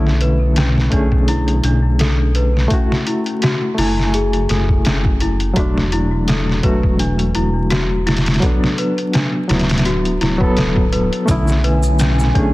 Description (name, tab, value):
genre	trip hop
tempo	84 BPM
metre	4/4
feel	swing 55% on 16ths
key	B dorian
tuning	A4 = 440 Hz
part	barky reed electric piano	accompaniment	0.0-12.5 s	D3 to G#5	-20 LUFS	left 1 dB	tremolo, low-pass filter, tape echo
part	worn celesta	arpeggios	0.0-12.5 s	C#4 to B4	-23 LUFS	left 2 dB	ping-pong delay
part	dark detuned saw bass	bass	0.0-12.5 s	D1 to B1	-18 LUFS	equal	none
part	trip hop sampler-style drum kit	drums	0.1-12.5 s	hi-hat, kick drum, snare drum	-18 LUFS	equal	vintage 12-bit sampler grit
part	warbly tape-like pad	sustained chords	11.5-12.5 s	G#5	-26 LUFS	right 2 dB	chorus, built-in reverb
part	maracas	percussion	11.3-12.3 s	none	-34 LUFS	left 1 dB	none
room	digital ambience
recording	dense, heavily limited modern master, vinyl crackle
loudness	-14 LUFS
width	side -18 dB against mid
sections	0.0-12.5 A section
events	none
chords	0.0 Bm11; 2.7 F#m9; 5.6 E9sus4; 8.4 D69; 11.3 Bm11